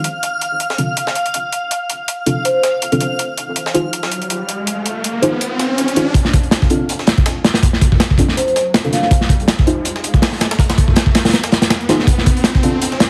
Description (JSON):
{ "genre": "drum and bass, jungle", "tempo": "162 BPM", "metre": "4/4", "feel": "swing 55% on 16ths", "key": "D minor", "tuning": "A4 = 440 Hz", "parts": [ { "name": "deep mellow chord stab", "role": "stabs", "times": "0.0-12.7 s", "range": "C4 to C5", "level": "-22 LUFS", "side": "equal", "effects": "chorus, phaser, dub echo" }, { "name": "breakbeat sampler-style drum kit", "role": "drums", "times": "0.0-13.1 s", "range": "hi-hat, snare drum", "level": "-25 LUFS", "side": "equal", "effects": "high-pass filter on hats, high-pass filter on snare" }, { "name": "backwards swelling texture", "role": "texture", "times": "0.0-6.2 s", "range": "F5 to F6", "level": "-26 LUFS", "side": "equal", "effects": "built-in reverb" }, { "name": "vibraphone with soft mallets", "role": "melody", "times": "2.4-2.7, 8.4-9.1 s", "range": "C5 to F5", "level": "-22 LUFS", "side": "equal", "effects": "vintage 12-bit sampler grit, low-pass filter, dub echo" }, { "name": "riser", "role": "sound effects", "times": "4.0-13.1 s", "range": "none", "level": "-26 LUFS", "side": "equal", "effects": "none" }, { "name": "crunchy breakbeat drum kit", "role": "drums", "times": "6.1-13.1 s", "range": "hi-hat, kick drum, snare drum", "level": "-15 LUFS", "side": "equal", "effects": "none" } ], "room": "moderate plate reverb, RT60 1.2 s, small room reverb", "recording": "heavily compressed radio sound, vinyl crackle", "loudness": "-16 LUFS", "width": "mono", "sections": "0.0-6.2 A section; 6.2-13.1 B section", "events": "filter sweep on synth stab 0.0-6.2; riser 4.0-6.2, 6.2-13.1; build-up 6.2-13.1; filter sweep on vibraphone 6.2-13.1", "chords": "0.2 Dm7; 3.2 Fm7; 6.2 Dm7; 9.1 Fm7; 12.1 Dm7" }